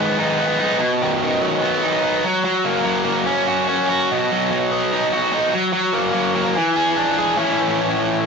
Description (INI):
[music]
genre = rock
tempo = 146 BPM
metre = 4/4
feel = straight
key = B major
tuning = A4 = 442 Hz
[part]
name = distorted electric guitar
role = solo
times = 0.0-8.3 s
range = G#2 to G#4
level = -16 LUFS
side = equal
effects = overdrive
[sound]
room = wet small room reverb, RT60 0.5 s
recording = rough rehearsal-room recording, tube saturation, nothing above 7.8 kHz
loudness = -16 LUFS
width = side -5 dB against mid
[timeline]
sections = 0.0-7.4 A section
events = none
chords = 0.0 G#m; 0.8 B; 2.2 F#; 4.1 B; 5.5 F#; 6.6 E7; 7.4 A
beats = 0.40 | 0.81 1.22 1.63 2.04 | 2.45 2.87 3.28 3.69 | 4.10 4.51 4.92 5.33 | 5.74 6.15 6.56 6.97 | 7.38 7.79 8.21